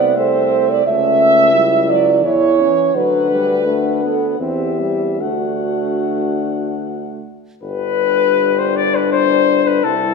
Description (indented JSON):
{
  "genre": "classical, hymn-like piece for brass band",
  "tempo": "72-89 BPM",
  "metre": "3/4",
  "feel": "rubato",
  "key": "G major",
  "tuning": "A4 = 440 Hz",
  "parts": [
    { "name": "warm flugelhorn", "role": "melody", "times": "0.0-10.1 s", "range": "A4 to F#5", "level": "-19 LUFS", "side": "left 10 dB", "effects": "none" },
    { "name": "dark French horn section", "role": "second line", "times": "0.0-10.1 s", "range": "D4 to E5", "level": "-16 LUFS", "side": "right 4 dB", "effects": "none" },
    { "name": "warm euphonium", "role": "accompaniment", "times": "0.0-10.1 s", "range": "A3 to E4", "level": "-22 LUFS", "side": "left 5 dB", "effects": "none" },
    { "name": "warm trombone", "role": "accompaniment", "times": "0.0-10.1 s", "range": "E3 to C4", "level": "-25 LUFS", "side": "right 3 dB", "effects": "none" },
    { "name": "clear tuba", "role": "bass", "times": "0.0-10.1 s", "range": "G1 to E2", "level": "-23 LUFS", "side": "left 1 dB", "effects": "none" }
  ],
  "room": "wet scoring stage reverb, RT60 1.7 s",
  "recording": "minimal, uncompressed stereo recording",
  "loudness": "-13 LUFS",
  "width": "side -4 dB against mid",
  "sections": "0.0-7.6 A section; 7.6-10.1 B section",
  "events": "none",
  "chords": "0.0 Am/C; 0.9 C#dim; 3.0 D; 4.4 C/E; 5.2 D; 7.6 G"
}